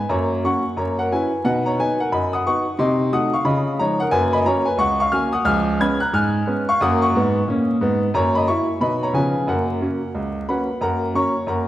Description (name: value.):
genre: jazz, stride piano.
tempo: 179 BPM.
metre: 4/4.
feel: swing 63% on 8ths.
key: F# major.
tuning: A4 = 440 Hz.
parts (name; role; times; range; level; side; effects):
clear baby grand piano; solo; 0.0-11.7 s; C#2 to G#6; -18 LUFS; equal; none.
room: wet recital hall reverb, RT60 1.7 s.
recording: recorded in a church or concert hall, vinyl crackle.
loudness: -18 LUFS.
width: side -14 dB against mid.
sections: 0.1-10.8 A section.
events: none.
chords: 0.1 F#; 0.8 F#7; 1.4 B; 2.8 Cdim7; 3.4 C#9; 5.5 C#7; 6.8 F#; 8.1 F#7; 8.8 B; 9.1 C#7; 9.5 F#.